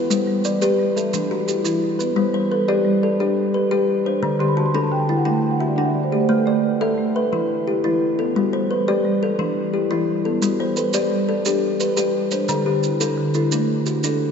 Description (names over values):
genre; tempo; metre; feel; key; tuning
southern african traditional, mbira-style interlocking cycle; 116 BPM (dotted quarters); 12/8; straight; G major; A4 = 442 Hz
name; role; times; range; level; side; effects
kalimba; arpeggios; 0.0-14.3 s; D3 to E5; -19 LUFS; left 3 dB; none
marimba with soft mallets; arpeggios; 0.0-14.3 s; D3 to C6; -23 LUFS; right 4 dB; none
maracas; percussion; 0.1-2.2, 10.4-14.2 s; none; -30 LUFS; right 8 dB; none
room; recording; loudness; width
wet cathedral reverb, RT60 6.1 s; in a vast, echoing space, nothing above 7.7 kHz; -18 LUFS; side -6 dB against mid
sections
0.0-2.2 A section; 2.2-14.3 B section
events
marimba fill 4.2-6.3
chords
0.1 G; 1.1 Em; 2.2 G; 4.2 D; 6.3 A5; 7.3 Em; 8.4 G; 9.4 Em; 10.4 G; 12.5 D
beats
| 0.11 0.62 1.14 1.65 | 2.17 2.68 3.20 3.71 | 4.23 4.74 5.26 5.77 | 6.29 6.80 7.32 7.84 | 8.35 8.87 9.39 9.90 | 10.42 10.94 11.46 11.97 | 12.49 13.01 13.53 14.04